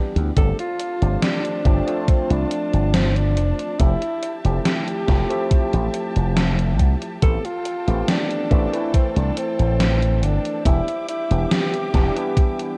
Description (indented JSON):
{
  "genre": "vaporwave",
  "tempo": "70 BPM",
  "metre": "4/4",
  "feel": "straight",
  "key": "F lydian",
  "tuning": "A4 = 444 Hz",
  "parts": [
    { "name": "barky tine electric piano", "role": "accompaniment", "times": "0.0-12.8 s", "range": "E3 to B4", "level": "-30 LUFS", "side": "equal", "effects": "overdrive, analog chorus, tape echo" },
    { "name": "slap bass with an envelope filter", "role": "bass", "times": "0.2-12.1 s", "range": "E1 to D2", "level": "-22 LUFS", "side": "equal", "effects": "none" },
    { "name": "gated 80s digital drum machine", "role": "drums", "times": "0.2-12.8 s", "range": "hi-hat, snare drum", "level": "-27 LUFS", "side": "equal", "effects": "gated reverb, gated reverb snare, small room ambience" },
    { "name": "breathy alto saxophone", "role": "melody", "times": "0.4-12.8 s", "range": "C4 to A4", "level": "-28 LUFS", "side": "equal", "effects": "tape echo" },
    { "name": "clear studio string section", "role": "sustained chords", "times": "0.4-12.8 s", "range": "F4 to D6", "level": "-38 LUFS", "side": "equal", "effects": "none" },
    { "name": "electronic kick drum", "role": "drums", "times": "0.4-12.5 s", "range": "none", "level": "-19 LUFS", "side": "equal", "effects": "small room ambience" }
  ],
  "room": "light reverb, digital ambience",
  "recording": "none",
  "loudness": "-20 LUFS",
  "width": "mono",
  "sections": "0.0-12.8 A section",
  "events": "none",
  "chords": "0.4 G9sus4; 3.8 Fmaj9; 7.2 Am7; 10.7 Em7"
}